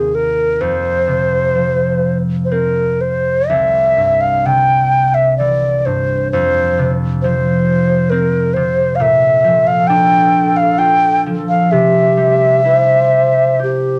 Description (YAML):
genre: celtic folk, Celtic slow air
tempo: 60-68 BPM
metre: 3/4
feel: rubato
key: C mixolydian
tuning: A4 = 440 Hz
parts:
  - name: breathy bright round clay ocarina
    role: melody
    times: 0.0-14.0 s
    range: G4 to G5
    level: -15 LUFS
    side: equal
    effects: none
  - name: concert harp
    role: accompaniment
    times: 0.0-14.0 s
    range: C2 to G4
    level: -20 LUFS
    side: equal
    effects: none
  - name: mellow hollow wooden flute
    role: second line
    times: 9.0-14.0 s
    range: G4 to C5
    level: -23 LUFS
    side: equal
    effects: none
room: moderate studio reverb, RT60 0.7 s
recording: none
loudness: -14 LUFS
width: mono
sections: 0.0-3.5 A section; 3.5-14.0 B section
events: none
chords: 0.0 Ab/Eb; 0.6 F5; 3.5 C; 6.3 F5; 9.0 Bb; 11.7 C